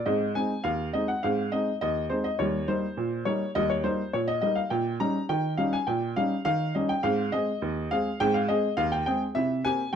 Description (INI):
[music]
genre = ragtime piano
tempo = 103 BPM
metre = 2/4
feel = straight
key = Ab major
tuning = A4 = 441 Hz
[part]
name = clear upright piano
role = solo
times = 0.0-10.0 s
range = Eb2 to Bb5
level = -25 LUFS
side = equal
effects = none
[sound]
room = moderate studio reverb, RT60 0.8 s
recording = dark, warm production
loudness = -25 LUFS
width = side -8 dB against mid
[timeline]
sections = 0.1-10.0 A section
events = none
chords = 0.1 Ab; 2.4 Eb; 4.7 Eb7/Bb; 7.0 Ab; 9.4 C7